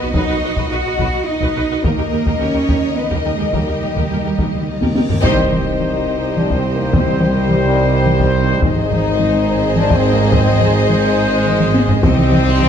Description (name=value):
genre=cinematic, epic orchestral film score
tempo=106 BPM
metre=3/4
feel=straight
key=C minor from 5.2 s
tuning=A4 = 440 Hz
part: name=rich symphonic violin section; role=melody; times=0.0-12.7 s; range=G4 to F#5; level=-30 LUFS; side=left 4 dB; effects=none
part: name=warm symphonic violin section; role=second line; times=0.0-12.7 s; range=C5 to D#5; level=-26 LUFS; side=left 4 dB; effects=none
part: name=clear symphonic viola section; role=accompaniment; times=0.0-12.7 s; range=F#4 to B4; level=-28 LUFS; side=right 1 dB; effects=none
part: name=rich studio string section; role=sustained chords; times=0.0-12.7 s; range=A#3 to D#5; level=-24 LUFS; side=left 2 dB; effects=none
part: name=rich studio cello section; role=bass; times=0.0-12.7 s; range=Ab2 to F#4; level=-22 LUFS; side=right 3 dB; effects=none
part: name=rich symphonic double bass section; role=bass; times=0.0-12.7 s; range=Ab1 to D#2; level=-22 LUFS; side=right 3 dB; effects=none
part: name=clear French horn section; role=sustained chords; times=0.1-12.7 s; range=G3 to D#5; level=-20 LUFS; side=left 4 dB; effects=none
part: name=warm tuba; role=bass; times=0.1-12.7 s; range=Ab1 to D#2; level=-23 LUFS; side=right 3 dB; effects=none
part: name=taiko ensemble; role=drums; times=0.1-12.7 s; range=none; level=-19 LUFS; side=left 1 dB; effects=none
part: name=warm trombone section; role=sustained chords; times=0.2-12.7 s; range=Eb3 to A#3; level=-27 LUFS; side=right 3 dB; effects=none
part: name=timpani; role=percussion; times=1.8-5.2 s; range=D#3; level=-26 LUFS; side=left 1 dB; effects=none
part: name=reverse cymbal and impact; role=sound effects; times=4.9-6.9 s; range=none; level=-29 LUFS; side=left 1 dB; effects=none
part: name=clear trumpet section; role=stabs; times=5.2-12.7 s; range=C5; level=-23 LUFS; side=equal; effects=none
room=wet recital hall reverb, RT60 1.6 s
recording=dark, warm production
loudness=-13 LUFS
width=side -8 dB against mid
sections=0.0-5.2 A section; 5.2-12.7 B section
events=timpani fill 1.8-5.2; drum fill 4.8-5.2, 11.6-12.0; reverse cymbal 4.9-5.2; band accent 5.2-5.8; impact 5.2-6.9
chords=0.0 B; 1.8 D#; 5.2 Cm; 8.6 Ab; 12.0 Cm